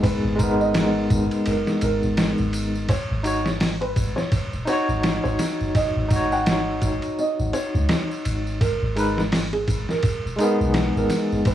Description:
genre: trip hop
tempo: 84 BPM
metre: 4/4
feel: swing 58% on 16ths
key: G# minor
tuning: A4 = 440 Hz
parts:
  - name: felt-muted upright piano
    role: melody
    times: 0.0-11.5 s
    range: G#4 to F#5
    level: -28 LUFS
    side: right 2 dB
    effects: dub echo
  - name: barky tine electric piano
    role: accompaniment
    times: 0.0-11.5 s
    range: G#3 to C#5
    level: -24 LUFS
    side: left 1 dB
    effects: fast tremolo, tape echo
  - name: soft 808-style bass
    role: bass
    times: 0.0-11.5 s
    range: D#1 to C#2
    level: -26 LUFS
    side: equal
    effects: none
  - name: trip hop sampler-style drum kit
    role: drums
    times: 0.0-11.5 s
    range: hi-hat, kick drum, ride cymbal, snare drum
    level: -24 LUFS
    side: equal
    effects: none
  - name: tambourine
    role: percussion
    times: 0.1-11.5 s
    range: none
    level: -41 LUFS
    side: equal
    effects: none
room: little or no reverb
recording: dry, gritty hardware recording, transformer saturation, vinyl crackle, studio ambience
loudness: -20 LUFS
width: side -11 dB against mid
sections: 0.0-11.5 A section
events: none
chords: 0.0 G#madd9; 2.9 D#m7; 8.6 G#madd9

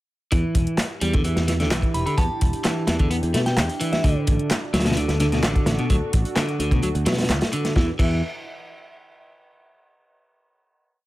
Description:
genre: breakbeat, breaks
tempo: 129 BPM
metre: 4/4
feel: straight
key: E minor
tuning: A4 = 440 Hz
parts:
  - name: dark analog pad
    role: sustained chords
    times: 0.9-8.0 s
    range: D4 to A4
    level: -33 LUFS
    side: right 1 dB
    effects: chorus, sidechain pumping
  - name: electric guitar at the edge of break-up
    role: riff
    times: 0.3-8.2 s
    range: B2 to B3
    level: -25 LUFS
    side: equal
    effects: tube saturation, dub echo
  - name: picked electric bass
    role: bass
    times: 0.3-8.2 s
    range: E1 to B2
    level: -24 LUFS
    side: equal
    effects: none
  - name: crunchy breakbeat drum kit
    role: drums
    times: 0.3-8.1 s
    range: crash cymbal, hi-hat, kick drum, snare drum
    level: -23 LUFS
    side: equal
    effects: none
  - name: punchy analog drum machine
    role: drums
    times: 0.3-7.7 s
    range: handclaps, hi-hat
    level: -30 LUFS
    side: equal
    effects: none
  - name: glassy synth bell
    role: melody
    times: 1.9-4.1 s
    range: E5 to B5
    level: -30 LUFS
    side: equal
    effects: chorus, old record sound, dub echo
room: studio ambience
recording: none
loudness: -19 LUFS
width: side -17 dB against mid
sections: 0.3-7.8 drop; 7.8-9.6 final chord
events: drop 0.3-7.8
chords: 0.3 Em7; 4.0 D; 7.8 Em7

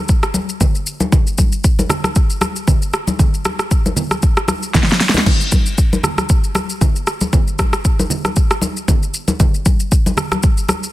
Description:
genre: amapiano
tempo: 116 BPM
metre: 4/4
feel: swing 55% on 16ths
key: none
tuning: none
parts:
  - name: deep house drum kit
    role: drums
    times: 0.1-10.9 s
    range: crash cymbal, hi-hat, kick drum, rim click, shaker, snare drum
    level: -14 LUFS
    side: equal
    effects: soft clipping on snare
  - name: congas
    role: percussion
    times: 0.3-10.8 s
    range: none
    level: -21 LUFS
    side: equal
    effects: none
room: little or no reverb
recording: dense, heavily limited modern master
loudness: -13 LUFS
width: side -16 dB against mid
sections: 0.0-10.9 A section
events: drum fill 4.7-5.3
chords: none

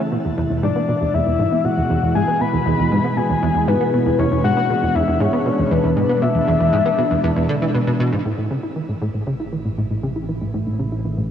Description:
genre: ambient, sequencer-driven space music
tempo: 118 BPM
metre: 4/4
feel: straight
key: A major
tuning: A4 = 439 Hz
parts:
  - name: sweeping resonant pad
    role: sustained chords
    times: 0.0-11.3 s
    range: B2 to E4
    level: -22 LUFS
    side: right 1 dB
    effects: chorus, shimmer reverb
  - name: plucky analog bass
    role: riff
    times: 0.0-11.2 s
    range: E2 to E4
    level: -20 LUFS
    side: right 1 dB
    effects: lush chorus, shimmer reverb, tape echo
  - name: soft octave-layered synth lead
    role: melody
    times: 0.6-7.7 s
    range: B4 to B5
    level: -21 LUFS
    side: left 6 dB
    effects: chorus, shimmer reverb, tape echo
  - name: analog drone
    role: bass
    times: 9.4-11.3 s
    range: A1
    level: -26 LUFS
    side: right 1 dB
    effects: chorus
room: wet lush hall reverb, RT60 2.6 s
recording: home recording on cassette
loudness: -17 LUFS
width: side -9 dB against mid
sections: 0.0-8.3 A section; 8.3-11.3 B section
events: filter sweep on analog synth bass 0.0-8.3, 8.3-11.3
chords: 0.1 E; 8.3 A

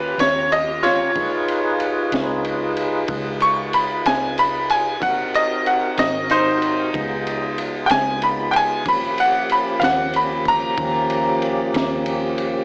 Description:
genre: slow blues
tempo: 62 BPM (dotted quarters)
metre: 12/8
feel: straight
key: unclear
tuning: A4 = 439 Hz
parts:
  - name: bright upright piano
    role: second line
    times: 0.0-12.4 s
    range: Eb4 to Db6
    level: -21 LUFS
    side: equal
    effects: none
  - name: tonewheel organ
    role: sustained chords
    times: 0.0-12.6 s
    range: F3 to Bb5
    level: -27 LUFS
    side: equal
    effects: slow rotary speaker, overdrive, chorus vibrato
  - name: vintage muted fingered electric bass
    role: bass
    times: 0.0-12.6 s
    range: Ab1 to Eb2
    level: -37 LUFS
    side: equal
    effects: none
  - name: crunchy breakbeat drum kit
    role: drums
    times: 0.2-12.5 s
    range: kick drum, ride cymbal, snare drum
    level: -28 LUFS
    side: equal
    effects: cassette tape
room: little or no reverb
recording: home recording on cassette, small speaker sound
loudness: -20 LUFS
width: mono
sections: 0.0-12.6 A section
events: upright piano solo 0.0-12.6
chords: 0.0 Eb9; 1.2 Db9; 5.0 Ab9; 6.9 Db9; 8.9 Eb9

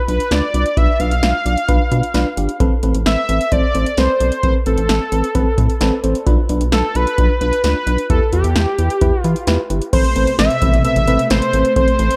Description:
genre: synth-pop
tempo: 131 BPM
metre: 4/4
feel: straight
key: A minor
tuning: A4 = 440 Hz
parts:
  - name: unison lead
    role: melody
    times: 0.0-12.2 s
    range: G4 to F5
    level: -21 LUFS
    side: equal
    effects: tape echo
  - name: mellow FM electric piano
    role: accompaniment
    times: 0.1-12.1 s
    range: C4 to D5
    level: -24 LUFS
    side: equal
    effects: chorus
  - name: rubbery square bass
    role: bass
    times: 0.1-12.1 s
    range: G1 to E3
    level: -20 LUFS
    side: equal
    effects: none
  - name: electro analog drum machine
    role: drums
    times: 0.1-12.2 s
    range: crash cymbal, hi-hat, kick drum, snare drum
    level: -21 LUFS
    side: equal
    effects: none
  - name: string machine, violas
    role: sustained chords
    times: 9.9-12.2 s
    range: B2 to C4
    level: -25 LUFS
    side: equal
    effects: phaser, ensemble chorus
room: light reverb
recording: dark, warm production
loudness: -16 LUFS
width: mono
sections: 0.0-9.9 A section; 9.9-12.2 B section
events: FM electric piano fill 5.6-6.3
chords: 0.0 Bdim; 2.6 Amadd9; 6.3 Bdim; 8.1 Em; 9.9 Amadd9

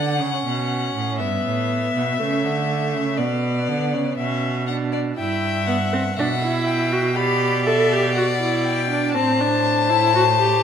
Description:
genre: classical, baroque-style fugue for string quartet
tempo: 60 BPM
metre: 4/4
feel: straight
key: E minor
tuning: A4 = 441 Hz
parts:
  - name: rich violin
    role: melody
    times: 0.0-10.6 s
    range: D5 to B5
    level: -23 LUFS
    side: left 9 dB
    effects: none
  - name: rich viola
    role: accompaniment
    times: 0.0-10.6 s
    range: A3 to A4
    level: -23 LUFS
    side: right 2 dB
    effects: none
  - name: clear cello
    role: bass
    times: 0.0-10.6 s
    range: G2 to D3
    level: -24 LUFS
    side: right 4 dB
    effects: none
  - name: rich violin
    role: second line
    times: 5.2-10.6 s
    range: C5 to G5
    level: -25 LUFS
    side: left 4 dB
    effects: none
room: wet recital hall reverb, RT60 1.4 s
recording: minimal, uncompressed stereo recording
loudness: -18 LUFS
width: side -8 dB against mid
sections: 0.0-5.2 A section; 5.2-10.6 B section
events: none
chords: 0.0 Bm; 1.2 E5; 3.2 Bm; 5.2 Em/G; 7.2 Em/B; 9.2 Am

